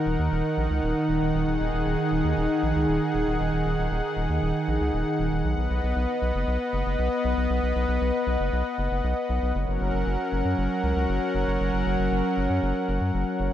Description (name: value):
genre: synthwave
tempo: 117 BPM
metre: 4/4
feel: straight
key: Eb minor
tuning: A4 = 439 Hz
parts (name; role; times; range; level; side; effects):
- warm analog pad; sustained chords; 0.0-13.5 s; Eb3 to Gb5; -24 LUFS; equal; chorus
- round analog bass; bass; 0.1-13.5 s; Eb1 to Gb2; -27 LUFS; equal; none
room: wet plate reverb, RT60 3.0 s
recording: dreamy mix soaked in reverb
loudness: -23 LUFS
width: side -11 dB against mid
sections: 0.0-13.5 A section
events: none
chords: 0.0 Ebm; 5.4 B; 9.6 Gb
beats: 0.32 0.83 | 1.35 1.86 2.37 2.88 | 3.40 3.91 4.42 4.94 | 5.45 5.96 6.47 6.99 | 7.50 8.01 8.53 9.04 | 9.55 10.06 10.58 11.09 | 11.60 12.12 12.63 13.14